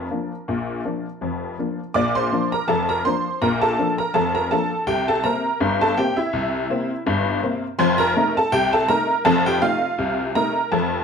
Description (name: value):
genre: ragtime piano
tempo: 82 BPM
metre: 2/4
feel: swing 54% on 16ths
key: Bb major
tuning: A4 = 442 Hz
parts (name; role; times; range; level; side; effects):
- honky-tonk upright piano; solo; 0.0-11.0 s; F1 to D6; -19 LUFS; equal; none
room: moderate club reverb, RT60 0.9 s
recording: none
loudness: -19 LUFS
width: side -6 dB against mid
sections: 0.0-1.9 A section; 1.9-11.0 B section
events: none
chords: 0.0 Bb; 4.9 C7; 7.8 F7